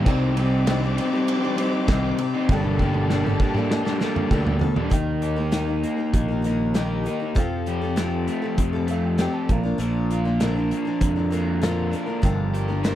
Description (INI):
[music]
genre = folk rock and heartland rock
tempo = 98 BPM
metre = 4/4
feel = straight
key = unclear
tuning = A4 = 436 Hz
[part]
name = dark upright piano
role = accompaniment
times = 0.0-13.0 s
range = Eb4 to Bb5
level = -36 LUFS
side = right 2 dB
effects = none
[part]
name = picked steel-string acoustic guitar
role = accompaniment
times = 0.0-13.0 s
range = G2 to Bb4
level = -28 LUFS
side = left 4 dB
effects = none
[part]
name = crunchy overdriven guitar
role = riff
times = 0.0-13.0 s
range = G2 to G4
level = -26 LUFS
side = right 1 dB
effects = none
[part]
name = fingered electric bass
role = bass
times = 0.0-13.0 s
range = G1 to F2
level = -25 LUFS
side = equal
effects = none
[part]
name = muted studio string section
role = sustained chords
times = 0.1-4.9 s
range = G4 to D6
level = -33 LUFS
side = left 2 dB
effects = none
[part]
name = loose indie drum kit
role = drums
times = 0.1-13.0 s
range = crash cymbal, hi-hat, kick drum, ride cymbal, snare drum, toms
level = -25 LUFS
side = equal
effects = none
[sound]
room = studio reverb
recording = none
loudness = -20 LUFS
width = side -12 dB against mid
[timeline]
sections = 0.0-4.9 A section; 4.9-13.0 B section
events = drum fill 2.5-4.9; upright piano fill 8.6-9.8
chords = 0.1 Cmadd9; 2.5 Gmadd9; 4.9 Eb; 7.4 Fadd9; 9.5 Bb; 12.2 Gm7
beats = | 0.06 0.67 1.27 1.88 | 2.49 3.10 3.70 4.31 | 4.92 5.53 6.14 6.75 | 7.36 7.96 8.57 9.18 | 9.79 10.40 11.01 11.62 | 12.23 12.84